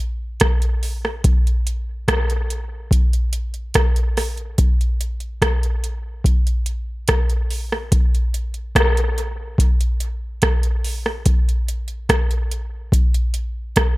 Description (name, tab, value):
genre	reggae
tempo	72 BPM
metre	4/4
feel	straight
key	none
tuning	none
part	booming analog drum machine	drums	0.4-14.0 s	hi-hat, kick drum, rim click	-18 LUFS	equal	overdrive
room	light reverb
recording	none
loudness	-18 LUFS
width	side -20 dB against mid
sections	0.0-14.0 A section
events	none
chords	none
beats	0.41 | 1.24 2.08 2.91 3.74 | 4.58 5.41 6.25 7.08 | 7.92 8.75 9.59 10.42 | 11.26 12.09 12.93 13.76